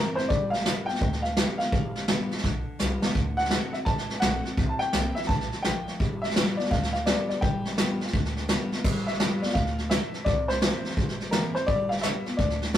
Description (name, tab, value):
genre	rockabilly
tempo	169 BPM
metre	4/4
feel	swing 65% on 8ths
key	G mixolydian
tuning	A4 = 440 Hz
part	clear upright piano	melody	0.0-12.8 s	Bb4 to A5	-30 LUFS	left 1 dB	none
part	picked steel-string acoustic guitar	accompaniment	0.0-12.8 s	G2 to F#4	-33 LUFS	left 2 dB	none
part	upright bass	bass	0.2-12.8 s	G1 to D2	-34 LUFS	equal	none
part	vintage brush drum kit	drums	0.2-12.8 s	crash cymbal, hi-hat, kick drum, snare drum	-26 LUFS	equal	none
room	moderate small room reverb, RT60 0.5 s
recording	rough rehearsal-room recording, tube saturation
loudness	-24 LUFS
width	side -11 dB against mid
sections	0.0-8.8 A section; 8.8-12.8 A section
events	drum fill 2.4-3.2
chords	0.3 G7; 3.2 D7; 4.6 C7; 6.0 G7; 10.3 C7; 11.7 G7